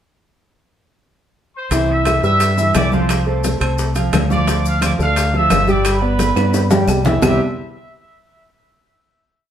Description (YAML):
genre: latin, salsa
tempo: 174 BPM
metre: 4/4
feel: straight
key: C major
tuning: A4 = 438 Hz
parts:
  - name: clear trumpet section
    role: melody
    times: 1.6-7.4 s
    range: B4 to E6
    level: -20 LUFS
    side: right 1 dB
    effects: tape echo
  - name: warm concert grand piano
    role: accompaniment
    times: 1.7-7.4 s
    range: C3 to G5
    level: -19 LUFS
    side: right 1 dB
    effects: none
  - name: deep dub fingered electric bass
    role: bass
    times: 1.7-7.4 s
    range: G1 to G2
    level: -18 LUFS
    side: equal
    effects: none
  - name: bongos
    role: percussion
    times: 1.7-7.3 s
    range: none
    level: -24 LUFS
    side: left 4 dB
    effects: none
  - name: congas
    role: percussion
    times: 1.7-7.3 s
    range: none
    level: -24 LUFS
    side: left 1 dB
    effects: none
  - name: maracas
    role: percussion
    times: 1.7-7.3 s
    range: none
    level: -31 LUFS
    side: left 6 dB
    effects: none
  - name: timbales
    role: percussion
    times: 1.7-7.3 s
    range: none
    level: -25 LUFS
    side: right 2 dB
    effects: none
  - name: claves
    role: percussion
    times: 2.1-7.3 s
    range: none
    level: -31 LUFS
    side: right 2 dB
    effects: none
room: wet studio reverb, RT60 0.9 s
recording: heard from further back in the room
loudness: -14 LUFS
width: side -10 dB against mid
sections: 0.3-1.7 pickup bar; 1.7-7.2 verse; 7.2-8.6 final chord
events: drum fill 6.4-7.2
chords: 0.3 N.C.; 1.7 Cmaj7; 3.1 F6/C; 4.5 Dmadd9; 5.8 G; 7.2 Cmaj7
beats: | 0.34 0.68 1.03 1.37 | 1.72 2.06 2.40 2.75 | 3.09 3.44 3.78 4.13 | 4.47 4.82 5.16 5.50 | 5.85 6.19 6.54 6.88 | 7.22